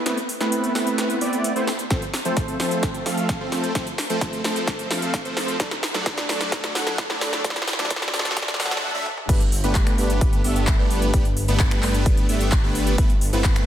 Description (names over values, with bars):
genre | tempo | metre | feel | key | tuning
EDM, festival progressive house | 130 BPM | 4/4 | straight | G major | A4 = 440 Hz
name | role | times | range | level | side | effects
supersaw chords | riff | 0.0-13.6 s | F3 to F#5 | -24 LUFS | right 1 dB | sidechain pumping, low-pass filter, digital delay
big-room dance drum kit | drums | 0.1-13.7 s | crash cymbal, finger snaps, handclaps, hi-hat, snare drum, toms | -26 LUFS | equal | high-pass filter on hats, high-pass filter on snare, high-pass filter on toms, high-pass filter on cymbals, high-pass filter on room
electronic kick drum | drums | 1.9-13.5 s | none | -21 LUFS | equal | none
wide detuned saw bass | bass | 9.3-13.7 s | G1 | -24 LUFS | equal | chorus, sidechain pumping
room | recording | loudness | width
light reverb | dense, heavily limited modern master, high-pass filter | -20 LUFS | side -11 dB against mid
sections
0.0-9.3 A section; 9.3-13.7 B section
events
build-up 0.0-9.3; drum fill 0.0-8.8, 8.8-9.3; filter sweep on supersaw synth 0.0-9.3; filter sweep 0.0-9.3; break 8.8-9.3; drop 9.3-13.7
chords
0.0 Amadd9; 1.9 F; 5.6 D; 9.3 Gadd9; 13.0 Amadd9/G